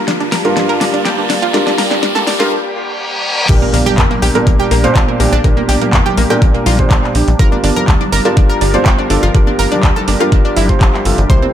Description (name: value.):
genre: progressive house.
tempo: 123 BPM.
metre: 4/4.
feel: straight.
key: G minor.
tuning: A4 = 443 Hz.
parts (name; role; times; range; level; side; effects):
filtered supersaw swell; sustained chords; 0.0-11.5 s; G2 to A5; -22 LUFS; equal; sidechain pumping, low-pass filter.
analog pluck; arpeggios; 0.0-11.5 s; Bb3 to C5; -18 LUFS; equal; chorus, sidechain pumping, tape echo.
felt-muted upright piano; stabs; 0.0-11.5 s; G2 to C5; -17 LUFS; equal; sidechain pumping, tape echo.
riser, reverse cymbal and impact; sound effects; 0.0-5.4 s; none; -20 LUFS; equal; none.
pop drum kit; drums; 0.1-11.4 s; crash cymbal, handclaps, hi-hat, snare drum; -19 LUFS; equal; sidechain pumping on hats, sidechain pumping on cymbals.
tight sequencer bass; bass; 3.5-11.4 s; G1 to F2; -16 LUFS; equal; sidechain pumping.
electronic kick drum; drums; 3.5-11.4 s; none; -11 LUFS; equal; overdrive.
congas; percussion; 3.6-11.5 s; none; -22 LUFS; right 3 dB; sidechain pumping on perc.
room: light reverb, digital ambience.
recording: high-pass filter.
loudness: -10 LUFS.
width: side -10 dB against mid.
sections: 0.0-3.5 A section; 3.5-11.5 B section.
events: build-up 0.0-3.5; drum fill 0.0-2.5; riser 0.0-2.5; filter sweep on supersaw synth 0.0-3.5; filter sweep 0.0-3.5; break 2.5-3.5; reverse cymbal 2.5-3.5; drop 3.5-11.5; impact 3.5-5.4.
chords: 0.0 Gm7; 3.5 Bb6; 7.4 Gm7.